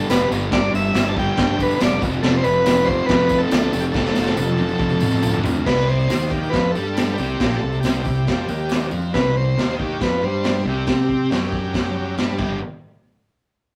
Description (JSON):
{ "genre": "garage rock duo or trio", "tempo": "138 BPM", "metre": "4/4", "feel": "straight", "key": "unclear", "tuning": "A4 = 440 Hz", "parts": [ { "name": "combo organ", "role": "melody", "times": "0.0-12.6 s", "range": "G4 to A5", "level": "-25 LUFS", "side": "equal", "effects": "none" }, { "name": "thick fuzz guitar", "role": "riff", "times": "0.0-12.6 s", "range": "F2 to C4", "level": "-25 LUFS", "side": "equal", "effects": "distortion" }, { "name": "fuzz fingered electric bass", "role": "bass", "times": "0.1-12.6 s", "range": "F1 to C3", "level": "-28 LUFS", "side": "equal", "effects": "overdrive" }, { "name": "crunchy breakbeat drum kit", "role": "drums", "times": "0.1-12.5 s", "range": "crash cymbal, hi-hat, kick drum, snare drum, toms", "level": "-24 LUFS", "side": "equal", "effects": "none" }, { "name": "tambourine", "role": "percussion", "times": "0.1-9.1 s", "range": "none", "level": "-42 LUFS", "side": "equal", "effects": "none" } ], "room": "wet small room reverb, RT60 0.5 s", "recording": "rough rehearsal-room recording", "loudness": "-20 LUFS", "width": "mono", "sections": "0.0-5.7 A section; 5.7-12.6 B section; 12.6-13.8 C section", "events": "drum fill 3.9-5.7", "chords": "0.0 G5; 2.0 F; 5.7 C5; 12.4 G5; 12.6 N.C." }